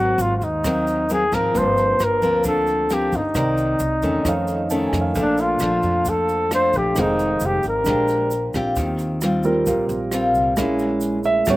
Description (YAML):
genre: bossa nova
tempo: 133 BPM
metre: 4/4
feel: straight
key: Bb major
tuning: A4 = 440 Hz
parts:
  - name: breathy flugelhorn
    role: melody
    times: 0.0-8.5 s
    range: D4 to C5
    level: -20 LUFS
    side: left 1 dB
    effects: slapback echo
  - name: nylon-string guitar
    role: accompaniment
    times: 0.0-11.6 s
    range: F2 to G4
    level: -23 LUFS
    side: left 1 dB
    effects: slapback echo
  - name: upright bass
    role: bass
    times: 0.0-11.6 s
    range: F1 to F2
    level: -27 LUFS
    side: equal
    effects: none
  - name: jazz brush drum kit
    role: drums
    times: 0.2-11.6 s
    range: hi-hat, kick drum, rim click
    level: -30 LUFS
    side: right 1 dB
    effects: none
  - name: egg shaker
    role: percussion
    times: 0.2-11.6 s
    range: none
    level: -36 LUFS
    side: right 4 dB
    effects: none
  - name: dark baby grand piano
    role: accompaniment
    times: 1.5-11.6 s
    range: G3 to Bb5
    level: -24 LUFS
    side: right 2 dB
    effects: slapback echo
room: little or no reverb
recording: recorded outdoors, with no room sound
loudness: -18 LUFS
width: side -18 dB against mid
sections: 0.0-8.8 A section; 8.8-11.6 B section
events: grand piano fill 4.5-5.2; grand piano solo 8.8-11.6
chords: 0.0 Ab9; 1.5 Gm11; 3.3 Cm9; 4.3 Faug7; 5.2 Bbmaj7; 7.0 Fm7; 7.9 Bb13; 8.8 Eb69; 10.6 Bbm7b5